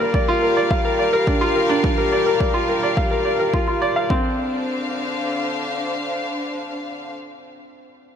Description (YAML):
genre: piano and strings electronica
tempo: 106 BPM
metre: 4/4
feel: straight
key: D minor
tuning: A4 = 435 Hz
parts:
  - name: dark studio string section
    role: sustained chords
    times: 0.0-7.1 s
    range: D3 to F5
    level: -24 LUFS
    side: left 2 dB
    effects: sidechain pumping
  - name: clear baby grand piano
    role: riff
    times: 0.0-8.2 s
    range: C4 to F5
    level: -20 LUFS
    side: equal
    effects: ping-pong delay
  - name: electronic kick drum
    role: drums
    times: 0.1-4.2 s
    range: none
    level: -22 LUFS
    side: equal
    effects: overdrive
  - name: shaker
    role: drums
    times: 0.4-3.9 s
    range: none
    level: barely audible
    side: none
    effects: none
room: moderate huge ambient reverb, RT60 3.9 s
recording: none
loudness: -18 LUFS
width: side -8 dB against mid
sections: 0.0-4.1 A section; 4.1-6.4 B section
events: none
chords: 0.0 Gm7; 4.1 Dm7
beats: 0.14 0.70 1.27 | 1.84 2.40 2.97 3.54 | 4.10 4.67 5.23 5.80